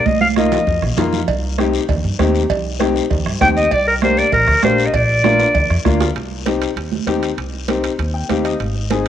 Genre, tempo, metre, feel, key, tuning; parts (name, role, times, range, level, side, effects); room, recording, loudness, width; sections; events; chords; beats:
latin, cumbia; 197 BPM; 4/4; straight; C minor; A4 = 436 Hz
clear clarinet; melody; 0.0-0.9, 3.4-5.9 s; Bb4 to G5; -15 LUFS; left 1 dB; cassette tape
upright bass; bass; 0.1-9.1 s; Ab1 to G2; -21 LUFS; equal
bombo; percussion; 0.1-6.0 s; -25 LUFS; equal
congas; percussion; 0.1-9.1 s; -22 LUFS; right 10 dB
guiro; percussion; 0.1-9.1 s; -32 LUFS; left 9 dB
warm upright piano; accompaniment; 0.4-9.1 s; Bb3 to G5; -20 LUFS; left 6 dB; cassette tape
cowbell and timbales; percussion; 1.3-9.1 s; -26 LUFS; right 9 dB
moderate lush hall reverb, RT60 2.3 s; home recording on cassette; -14 LUFS; side -10 dB against mid
0.0-6.2 A section; 6.2-9.1 B section
drum fill 0.1-1.3, 5.2-6.2; upright piano fill 8.0-8.6
0.1 Ebsus2/C; 1.3 Cm; 3.7 Gm/C; 4.9 Bb; 6.2 Cm
| 0.06 0.36 0.67 0.97 | 1.28 1.58 1.89 2.19 | 2.50 2.80 3.11 3.41 | 3.72 4.02 4.33 4.63 | 4.94 5.24 5.55 5.85 | 6.16 6.46 6.77 7.07 | 7.38 7.68 7.99 8.29 | 8.60 8.90